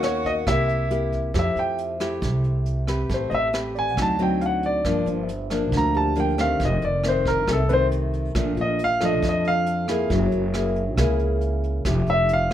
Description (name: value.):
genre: bossa nova.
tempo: 137 BPM.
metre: 4/4.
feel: straight.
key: F major.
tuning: A4 = 440 Hz.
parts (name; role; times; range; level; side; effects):
warm grand piano; melody; 0.0-12.5 s; Ab4 to Bb5; -23 LUFS; equal; none.
warm cello; second line; 0.0-1.1 s; E4 to Gb4; -32 LUFS; right 4 dB; none.
nylon-string guitar; accompaniment; 0.0-12.5 s; F2 to B4; -25 LUFS; left 2 dB; none.
tine electric piano; accompaniment; 0.0-11.9 s; F4 to Gb5; -33 LUFS; right 6 dB; slow stereo tremolo.
upright bass; bass; 0.0-12.5 s; F1 to F2; -26 LUFS; right 1 dB; none.
vintage brush drum kit; drums; 0.0-12.5 s; hi-hat, kick drum, rim click; -30 LUFS; right 1 dB; none.
room: light reverb.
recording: minimal, uncompressed stereo recording.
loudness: -20 LUFS.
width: side -11 dB against mid.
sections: 0.0-1.3 A section; 1.3-12.5 B section.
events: grand piano solo 1.3-12.5.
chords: 0.5 C7; 1.3 Fmaj9; 3.1 Am9; 4.0 D7b9; 4.8 Gm7; 6.6 F7; 8.3 Bbmaj7; 10.1 Gb9; 11.8 Fmaj9.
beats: 0.03 0.47 0.90 | 1.34 1.78 2.22 2.66 | 3.09 3.53 3.97 4.41 | 4.85 5.28 5.72 6.16 | 6.60 7.03 7.47 7.91 | 8.35 8.79 9.22 9.66 | 10.10 10.54 10.97 11.41 | 11.85 12.29.